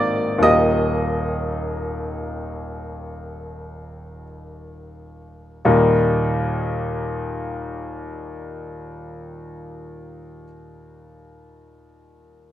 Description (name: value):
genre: neoclassical minimalist piano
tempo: free time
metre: none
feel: none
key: Eb major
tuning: A4 = 439 Hz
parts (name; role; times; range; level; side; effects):
- clear grand piano; solo; 0.0-12.5 s; Eb1 to Eb6; -21 LUFS; equal; slapback echo
room: small room ambience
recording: rough home demo mix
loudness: -19 LUFS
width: side -12 dB against mid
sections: 0.0-5.7 A section; 5.7-11.1 B section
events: slowing down 0.0-5.7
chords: 0.4 Ebadd9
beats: free time